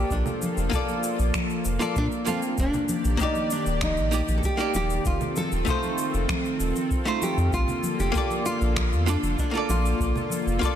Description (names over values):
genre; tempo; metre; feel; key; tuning
sunset chillout; 97 BPM; 4/4; straight; Bb major; A4 = 439 Hz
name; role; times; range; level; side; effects
nylon-string guitar; melody; 0.0-10.6 s; C4 to A4; -30 LUFS; equal; ping-pong delay
archtop guitar, miked and amplified; accompaniment; 0.0-10.8 s; Eb3 to F5; -29 LUFS; moving between left 4 dB and right 4 dB; auto-pan, ping-pong delay
lush unison pad; sustained chords; 0.0-10.8 s; D3 to D5; -30 LUFS; equal; chorus
warm sub bass; bass; 0.0-10.6 s; Eb1 to Bb2; -25 LUFS; equal; none
electronic kick drum; drums; 0.1-10.7 s; none; -29 LUFS; equal; none
electronic shaker and finger snaps; drums; 0.1-10.7 s; none; -35 LUFS; left 2 dB; overdrive
congas; percussion; 0.3-10.7 s; none; -35 LUFS; equal; none
room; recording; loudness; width
moderate recital hall reverb, RT60 1.8 s; dense, heavily limited modern master; -22 LUFS; side -10 dB against mid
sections
0.0-10.8 A section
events
none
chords
0.0 Bbmaj7; 2.6 Ebmaj7; 5.1 F7; 7.5 Bbmaj7